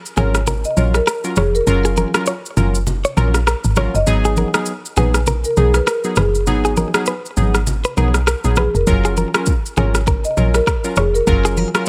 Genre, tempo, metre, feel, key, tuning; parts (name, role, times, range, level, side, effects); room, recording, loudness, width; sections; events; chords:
afrobeats; 100 BPM; 4/4; swing 58% on 16ths; F# major; A4 = 440 Hz
deep house drum kit; drums; 0.1-11.9 s; kick drum, rim click, shaker; -23 LUFS; equal
marimba with soft mallets; melody; 0.2-11.9 s; G#4 to D#5; -24 LUFS; equal
warm analog keys; accompaniment; 0.2-11.9 s; F#3 to A#4; -24 LUFS; equal; chorus
direct-recorded clean electric guitar; riff; 0.2-11.7 s; G#4 to C#5; -25 LUFS; equal; delay
deep log drum bass; bass; 0.2-11.6 s; E#1 to B1; -19 LUFS; equal
congas; percussion; 0.2-11.7 s; -27 LUFS; equal
digital ambience; -17 LUFS; mono
0.0-11.9 A section
break 0.0-8.9
0.0 F#maj7; 4.1 G#m7; 8.9 F#maj7